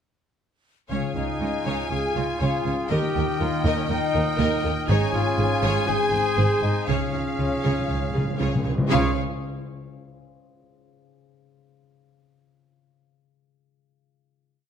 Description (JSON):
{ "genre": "cinematic, heroic adventure film score", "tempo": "120 BPM", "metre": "4/4", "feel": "straight", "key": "Db lydian", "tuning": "A4 = 436 Hz", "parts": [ { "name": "rich symphonic violin section", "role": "melody", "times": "0.9-9.2 s", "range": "F5 to Ab5", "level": "-31 LUFS", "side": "left 5 dB", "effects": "none" }, { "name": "bright oboe", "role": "second line", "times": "0.9-9.1 s", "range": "C5 to F5", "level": "-35 LUFS", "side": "equal", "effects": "none" }, { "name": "clear clarinet", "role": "second line", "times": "0.9-9.1 s", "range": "Ab4 to Bb4", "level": "-35 LUFS", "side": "left 2 dB", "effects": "none" }, { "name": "mellow hollow large flute ensemble", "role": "second line", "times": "0.9-9.2 s", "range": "Db5 to Ab5", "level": "-34 LUFS", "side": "left 4 dB", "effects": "none" }, { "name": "rich symphonic violin section", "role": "second line", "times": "0.9-9.2 s", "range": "Ab4 to F5", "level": "-36 LUFS", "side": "left 3 dB", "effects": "none" }, { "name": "rich symphonic viola section", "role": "accompaniment", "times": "0.9-9.2 s", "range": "Ab4 to Db5", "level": "-34 LUFS", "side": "right 2 dB", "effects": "none" }, { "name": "mellow French horn section", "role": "sustained chords", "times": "0.9-9.1 s", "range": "Db4 to Ab4", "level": "-31 LUFS", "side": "left 4 dB", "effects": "none" }, { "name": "warm trombone section", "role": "sustained chords", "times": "0.9-9.1 s", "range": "Ab2 to F4", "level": "-34 LUFS", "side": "right 4 dB", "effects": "none" }, { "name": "concert harp", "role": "arpeggios", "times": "0.9-10.9 s", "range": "Ab2 to F5", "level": "-34 LUFS", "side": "left 10 dB", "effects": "none" }, { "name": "warm trumpet", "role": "stabs", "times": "0.9-9.1 s", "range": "Db4 to Db5", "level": "-32 LUFS", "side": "right 2 dB", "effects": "none" }, { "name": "rich studio cello section", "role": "bass", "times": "0.9-9.2 s", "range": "Db2 to Db3", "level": "-28 LUFS", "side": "right 2 dB", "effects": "none" }, { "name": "warm symphonic double bass section", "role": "bass", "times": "0.9-9.2 s", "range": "Ab1 to Eb2", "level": "-29 LUFS", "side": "right 4 dB", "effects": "none" }, { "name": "timpani", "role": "percussion", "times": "0.9-1.6, 6.9-9.1 s", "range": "Db3", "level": "-28 LUFS", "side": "equal", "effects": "none" } ], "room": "moderate scoring stage reverb, RT60 1.5 s", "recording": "none", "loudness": "-21 LUFS", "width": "side -8 dB against mid", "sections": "0.9-8.9 theme; 8.9-10.9 final chord", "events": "timpani fill 6.9-8.9", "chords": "0.9 Dbadd9; 2.9 Eb; 4.9 Db/Ab; 5.9 Ab; 6.9 Db", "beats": "| 0.91 1.41 1.91 2.41 | 2.91 3.41 3.90 4.40 | 4.89 5.39 5.88 6.38 | 6.88 7.39 7.89 8.40 | 8.91 9.41 9.91 10.41" }